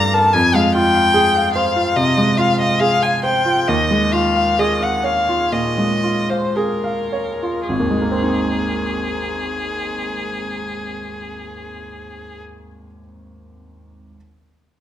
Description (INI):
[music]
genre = classical, impressionist duo for violin and grand piano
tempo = 50-75 BPM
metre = 4/4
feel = rubato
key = Ab major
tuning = A4 = 440 Hz
[part]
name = rich violin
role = melody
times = 0.0-12.4 s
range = Ab4 to Bb5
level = -19 LUFS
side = left 2 dB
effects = none
[part]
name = clear grand piano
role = accompaniment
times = 0.0-14.2 s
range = Ab1 to F5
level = -19 LUFS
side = right 1 dB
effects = none
[sound]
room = moderate recital hall reverb, RT60 1.5 s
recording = none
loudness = -15 LUFS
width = side -11 dB against mid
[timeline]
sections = 0.0-7.7 A section; 7.7-11.9 B section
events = slowing down 0.0-7.7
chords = 0.3 Fmadd9; 3.7 Eb9sus4; 7.7 Abadd9